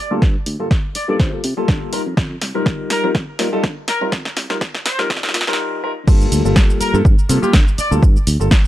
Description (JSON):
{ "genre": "filtered disco house", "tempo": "123 BPM", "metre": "4/4", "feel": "swing 54% on 16ths", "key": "G minor", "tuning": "A4 = 443 Hz", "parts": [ { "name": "clear horn section", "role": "melody", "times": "0.0-7.9 s", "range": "Bb4 to D5", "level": "-24 LUFS", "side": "equal", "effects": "vintage 12-bit sampler grit, sidechain pumping, low-pass filter" }, { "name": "dark concert grand piano", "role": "accompaniment", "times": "0.1-8.5 s", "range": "G3 to D5", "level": "-20 LUFS", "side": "left 2 dB", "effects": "phaser, sidechain pumping, low-pass filter" }, { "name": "fingered electric bass", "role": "bass", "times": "0.1-8.5 s", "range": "G1 to D3", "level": "-21 LUFS", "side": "equal", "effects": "sidechain pumping, high-pass filter, low-pass filter" }, { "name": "electronic kick drum", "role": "drums", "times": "0.2-8.6 s", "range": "none", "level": "-14 LUFS", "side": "equal", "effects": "overdrive" }, { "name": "punchy analog drum machine", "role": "drums", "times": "0.2-8.7 s", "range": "crash cymbal, hi-hat, shaker, snare drum", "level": "-21 LUFS", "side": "equal", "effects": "overdrive, high-pass filter on snare, sidechain pumping on hats, high-pass filter on hats, sidechain pumping on cymbals, high-pass filter on cymbals, sidechain pumping on perc, high-pass filter on perc" } ], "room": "little or no reverb", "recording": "dry, gritty hardware recording, transformer saturation, high-pass filter", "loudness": "-14 LUFS", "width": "side -14 dB against mid", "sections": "0.0-6.1 A section; 6.1-8.7 B section", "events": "build-up 0.0-6.1; drum fill 0.0-5.6; filter sweep on horn section 0.0-6.1; filter sweep 0.0-6.1; break 5.6-6.1; drop 6.1-8.7", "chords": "0.0 Gm9; 1.9 F9sus4; 6.1 Gm9", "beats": "| 0.22 0.71 1.20 1.69 | 2.17 2.66 3.15 3.64 | 4.12 4.61 5.10 5.59 | 6.08 6.56 7.05 7.54 | 8.03 8.51" }